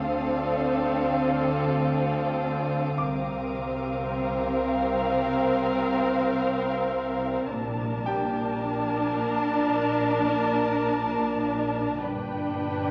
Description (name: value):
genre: cinematic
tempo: 53 BPM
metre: 4/4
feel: straight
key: unclear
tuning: A4 = 440 Hz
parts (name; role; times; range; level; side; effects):
- muted symphonic violin section; melody; 0.0-12.9 s; F5 to A5; -34 LUFS; equal; none
- muted chamber violin section; second line; 0.0-12.9 s; A4 to B4; -35 LUFS; equal; none
- muted chamber viola section; accompaniment; 0.0-12.9 s; C4 to D4; -29 LUFS; equal; none
- muted chamber cello section; bass; 0.0-12.9 s; G2 to D3; -37 LUFS; equal; none
- muted chamber double bass section; bass; 0.0-12.9 s; G1 to D2; -37 LUFS; equal; none
- bowed-like drone; drone; 0.0-12.9 s; G1 to D2; -40 LUFS; equal; none
- bright grand piano; texture; 0.0-12.1 s; G4 to D6; -39 LUFS; equal; none
- muted chamber violin section; texture; 0.0-6.9 s; D6 to Eb6; -47 LUFS; equal; none
- reverse cymbal; sound effects; 12.9 s; none; barely audible; none; none
room: wet recital hall reverb, RT60 1.6 s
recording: none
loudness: -26 LUFS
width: mono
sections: 0.0-12.9 A section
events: none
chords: 0.0 Dm7; 3.0 C7sus4; 7.5 Bbmaj7; 12.0 G